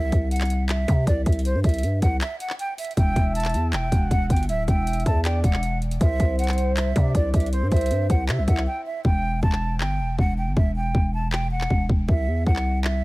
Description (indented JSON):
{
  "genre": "hip hop, trap",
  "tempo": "158 BPM",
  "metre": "4/4",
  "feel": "half-time",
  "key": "E minor",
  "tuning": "A4 = 440 Hz",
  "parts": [
    { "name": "breathy hollow jazz flute", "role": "melody", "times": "0.0-13.0 s", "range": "C5 to A5", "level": "-29 LUFS", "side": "right 1 dB", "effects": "none" },
    { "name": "growling 808-style bass", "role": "bass", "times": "0.0-13.0 s", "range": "D1 to C3", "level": "-23 LUFS", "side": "equal", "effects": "none" },
    { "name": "trap drum kit", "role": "drums", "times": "0.1-12.9 s", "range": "handclaps, hi-hat, kick drum", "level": "-22 LUFS", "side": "equal", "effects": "none" },
    { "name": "soft octave-layered synth lead", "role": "second line", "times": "3.0-9.0 s", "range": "C5 to F#5", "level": "-31 LUFS", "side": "right 1 dB", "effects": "chorus, ping-pong delay" }
  ],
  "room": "digital ambience",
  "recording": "vinyl crackle",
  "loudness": "-20 LUFS",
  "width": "side -20 dB against mid",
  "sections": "0.0-9.0 A section; 9.0-13.0 B section",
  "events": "break 2.2-3.0, 8.7-9.0; hi-hats muted 9.0-13.0",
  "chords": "0.0 C; 3.0 Em; 6.0 C; 9.0 Em; 12.1 C"
}